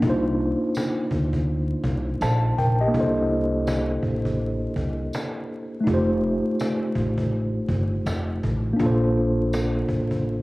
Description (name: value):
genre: lo-fi hip hop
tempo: 82 BPM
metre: 4/4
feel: swing 61% on 16ths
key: C dorian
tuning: A4 = 440 Hz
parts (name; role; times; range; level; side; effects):
- mellow tine electric piano; accompaniment; 0.0-10.4 s; A3 to A5; -24 LUFS; equal; medium stereo tremolo, cassette tape, low-pass filter
- upright bass; bass; 0.0-10.4 s; F1 to D2; -25 LUFS; equal; none
- cajon; drums; 0.0-10.4 s; none; -30 LUFS; equal; cassette tape
- tambourine; percussion; 0.7-9.7 s; none; -43 LUFS; right 1 dB; none
room: light reverb, studio reverb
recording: home recording on cassette, vinyl crackle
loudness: -21 LUFS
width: side -20 dB against mid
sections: 0.0-10.4 A section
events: none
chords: 0.0 Cm11; 2.9 C13; 5.9 F9; 8.8 Bbmaj9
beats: | 0.01 0.75 1.48 2.21 | 2.94 3.67 4.41 5.14 | 5.87 6.60 7.33 8.06 | 8.79 9.53 10.26